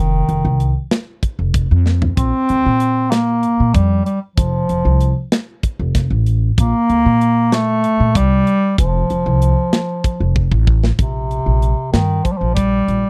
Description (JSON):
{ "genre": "progressive instrumental, band music in an uneven meter", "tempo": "190 BPM (eighths)", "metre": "7/8", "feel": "straight", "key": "unclear", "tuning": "A4 = 440 Hz", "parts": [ { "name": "clear bass clarinet", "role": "melody", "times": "0.0-13.1 s", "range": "C3 to C4", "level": "-19 LUFS", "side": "equal", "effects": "none" }, { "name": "upright bass", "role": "bass", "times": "0.0-13.0 s", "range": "F1 to Bb2", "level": "-18 LUFS", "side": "equal", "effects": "none" }, { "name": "tight metal drum kit", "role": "drums", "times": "0.3-13.0 s", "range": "hi-hat, kick drum, snare drum, toms", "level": "-19 LUFS", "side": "equal", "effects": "none" } ], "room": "little or no reverb", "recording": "dry, close 1970s-style studio recording", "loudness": "-16 LUFS", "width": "mono", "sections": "0.0-11.0 A section; 11.0-13.1 B section", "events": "drum fill 1.9-2.2, 10.4-11.0", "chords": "0.0 F5; 2.2 Bbsus2; 4.4 F5; 6.6 Bbmaj7(no3); 8.8 F5; 11.0 Bbsus2" }